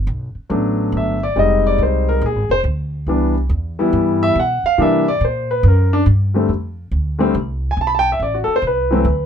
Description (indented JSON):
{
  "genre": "jazz",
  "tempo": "140 BPM",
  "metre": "4/4",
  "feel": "swing 66% on 8ths",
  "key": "unclear",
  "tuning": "A4 = 440 Hz",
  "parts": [
    { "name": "upright bass", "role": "bass", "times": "0.0-9.3 s", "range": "F1 to C3", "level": "-19 LUFS", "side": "equal", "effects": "none" },
    { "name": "warm concert grand piano", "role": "melody", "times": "0.5-9.3 s", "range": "D3 to B5", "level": "-16 LUFS", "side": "left 1 dB", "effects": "none" }
  ],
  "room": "light reverb",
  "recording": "minimal, uncompressed stereo recording",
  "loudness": "-15 LUFS",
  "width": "side -8 dB against mid",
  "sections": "0.0-9.3 A section",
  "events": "grand piano solo 0.0-9.3",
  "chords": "0.0 Gmaj9; 1.4 Fm7; 2.2 Bb7; 3.1 Cmaj7; 4.8 C9; 6.5 F5; 8.2 D7"
}